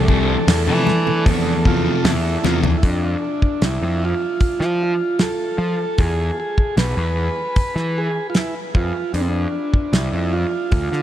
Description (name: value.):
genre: psychedelic rock.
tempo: 76 BPM.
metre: 4/4.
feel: straight.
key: unclear.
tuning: A4 = 440 Hz.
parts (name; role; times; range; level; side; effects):
combo organ; melody; 0.0-11.0 s; C4 to B4; -22 LUFS; right 2 dB; diffuse ambient delay.
rich symphonic string section; sustained chords; 0.0-2.8 s; A3 to D4; -31 LUFS; right 5 dB; none.
fuzz picked electric bass; bass; 0.0-11.0 s; B1 to F3; -20 LUFS; equal; overdrive.
fuzz guitar; riff; 0.1-2.7 s; F2 to F3; -23 LUFS; left 2 dB; distortion, phaser.
damped 70s drum kit; drums; 0.1-11.0 s; hi-hat, kick drum, snare drum, toms; -19 LUFS; equal; none.
congas; percussion; 0.1-2.8 s; none; -30 LUFS; left 10 dB; none.
room: moderate huge ambient reverb, RT60 8.3 s.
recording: dreamy mix soaked in reverb.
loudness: -17 LUFS.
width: side -12 dB against mid.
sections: 0.0-2.8 A section; 2.8-11.0 B section.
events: drum fill 2.4-2.8.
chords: 0.0 F; 2.8 F6; 6.0 E5; 8.8 F5.